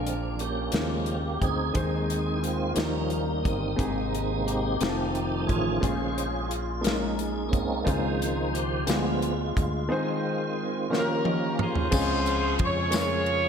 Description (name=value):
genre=slow gospel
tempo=59 BPM (dotted quarters)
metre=6/8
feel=straight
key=Ab major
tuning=A4 = 440 Hz
part: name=clear concert grand piano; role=accompaniment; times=0.0-13.5 s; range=Ab2 to Bb5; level=-31 LUFS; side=left 1 dB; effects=slapback echo
part: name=tonewheel organ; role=sustained chords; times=0.0-13.5 s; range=C3 to C5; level=-29 LUFS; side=right 1 dB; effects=chorus vibrato, slow rotary speaker
part: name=fingered electric bass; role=bass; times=0.0-13.5 s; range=F1 to F2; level=-31 LUFS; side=equal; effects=none
part: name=modern studio drum kit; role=drums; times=0.1-13.4 s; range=crash cymbal, hi-hat, kick drum, ride cymbal, snare drum, toms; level=-30 LUFS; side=equal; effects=none
part: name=warm horn section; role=melody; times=11.0-13.5 s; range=Db4 to Db5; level=-27 LUFS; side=right 1 dB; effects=slapback echo, tape echo
part: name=tambourine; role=percussion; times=11.9-13.2 s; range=none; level=-40 LUFS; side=left 6 dB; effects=none
room=wet lush hall reverb, RT60 2.2 s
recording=big arena sound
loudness=-24 LUFS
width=side -7 dB against mid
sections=0.0-11.9 A section; 11.9-13.5 B section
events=tonewheel organ solo 0.0-11.9; grand piano fill 10.9-11.9; drum fill 10.9-11.9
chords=0.0 Bb7; 0.7 Eb9sus4; 1.7 Ab/Eb; 2.8 Eb7; 3.8 Abmaj7; 4.8 F7; 5.8 Bbm7; 7.9 Dbmaj7; 8.9 Ddim7; 9.9 Ab/Eb; 10.9 Eb7; 11.9 Dbmaj7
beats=0.73 | 1.75 2.77 | 3.79 4.81 | 5.83 6.85 | 7.87 8.88 | 9.90 10.91 | 11.93 12.94